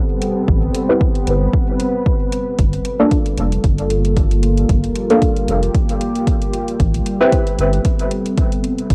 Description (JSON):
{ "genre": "dub techno", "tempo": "114 BPM", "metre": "4/4", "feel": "swing 55% on 16ths", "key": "unclear", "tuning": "A4 = 439 Hz", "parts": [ { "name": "deep dark ambient pad", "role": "sustained chords", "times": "0.0-8.9 s", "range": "G3 to B4", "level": "-24 LUFS", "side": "equal", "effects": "chorus, built-in reverb, vintage 12-bit sampler grit, sidechain pumping, cassette tape" }, { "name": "electronic hi-hat", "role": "drums", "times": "0.2-8.9 s", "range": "none", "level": "-35 LUFS", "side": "equal", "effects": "overdrive, cassette tape" }, { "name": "round analog bass", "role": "bass", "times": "0.5-8.9 s", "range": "F1 to A1", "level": "-20 LUFS", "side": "equal", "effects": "sidechain pumping" }, { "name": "electronic kick drum", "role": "drums", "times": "0.5-8.9 s", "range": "none", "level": "-20 LUFS", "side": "equal", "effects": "overdrive, cassette tape" }, { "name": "deep mellow chord stab", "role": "stabs", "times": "0.9-7.4 s", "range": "Bb3 to B4", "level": "-20 LUFS", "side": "equal", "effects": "chorus, phaser, cassette tape, dub echo" } ], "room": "light reverb", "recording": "home recording on cassette", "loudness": "-17 LUFS", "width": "mono", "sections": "0.0-8.9 A section", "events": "none", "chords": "0.0 Am9; 2.6 Gm9; 6.8 Am9", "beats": "| 0.48 1.01 1.53 2.06 | 2.59 3.11 3.64 4.17 | 4.69 5.22 5.75 6.27 | 6.80 7.32 7.85 8.38 | 8.90" }